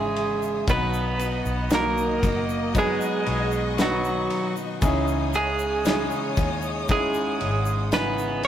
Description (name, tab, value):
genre	pop ballad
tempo	58 BPM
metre	4/4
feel	straight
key	B major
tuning	A4 = 440 Hz
part	direct-recorded clean electric guitar	melody	0.0-8.5 s	F#3 to B4	-25 LUFS	right 2 dB	none
part	warm studio violin section	second line	0.0-8.5 s	C#5 to E5	-36 LUFS	left 2 dB	none
part	clear concert grand piano	accompaniment	0.0-8.5 s	B2 to B4	-29 LUFS	equal	none
part	bright studio string section	sustained chords	0.0-8.5 s	F#4 to D#6	-35 LUFS	left 3 dB	none
part	clean electric guitar	arpeggios	0.0-8.5 s	B2 to B4	-35 LUFS	left 4 dB	none
part	vintage muted fingered electric bass	bass	0.0-8.5 s	F#1 to D#2	-30 LUFS	equal	none
part	loose indie drum kit	drums	0.2-8.5 s	kick drum, ride cymbal, snare drum	-29 LUFS	equal	none
part	egg shaker	percussion	0.4-8.4 s	none	-43 LUFS	right 5 dB	none
room	moderate small room reverb, RT60 0.5 s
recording	rough rehearsal-room recording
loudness	-21 LUFS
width	side -10 dB against mid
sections	0.0-8.5 A section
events	none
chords	0.0 C#madd9; 0.7 B; 4.8 C#madd9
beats	| 0.69 1.72 2.75 3.79 | 4.82 5.86 6.89 7.93